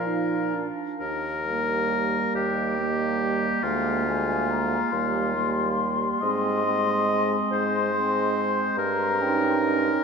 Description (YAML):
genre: classical, slow romantic movement for wind quintet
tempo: 46 BPM (dotted quarters)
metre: 6/8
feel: rubato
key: Eb major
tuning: A4 = 440 Hz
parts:
  - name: mellow concert flute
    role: melody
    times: 0.0-10.0 s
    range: Eb5 to C6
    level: -30 LUFS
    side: left 5 dB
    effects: none
  - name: warm oboe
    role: second line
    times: 0.0-10.0 s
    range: F4 to Eb5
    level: -26 LUFS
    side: left 2 dB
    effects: none
  - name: clear clarinet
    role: accompaniment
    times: 0.0-10.0 s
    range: Bb3 to Eb4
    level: -30 LUFS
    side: right 8 dB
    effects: none
  - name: warm French horn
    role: accompaniment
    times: 0.0-10.0 s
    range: F3 to Db4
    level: -31 LUFS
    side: equal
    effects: none
  - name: mellow bassoon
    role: bass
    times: 0.0-9.9 s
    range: D2 to Bb2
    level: -30 LUFS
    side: right 4 dB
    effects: none
room: wet cathedral reverb, RT60 6.7 s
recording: in a vast, echoing space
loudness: -22 LUFS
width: side -5 dB against mid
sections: 0.0-1.0 A section; 1.0-10.0 A section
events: none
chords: 0.0 Bb; 1.0 Eb; 3.6 Bb7/D; 4.9 Eb; 6.2 Ab; 8.8 Eb7/G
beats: | 1.01 2.35 | 3.64 4.93 | 6.23 7.52 | 8.79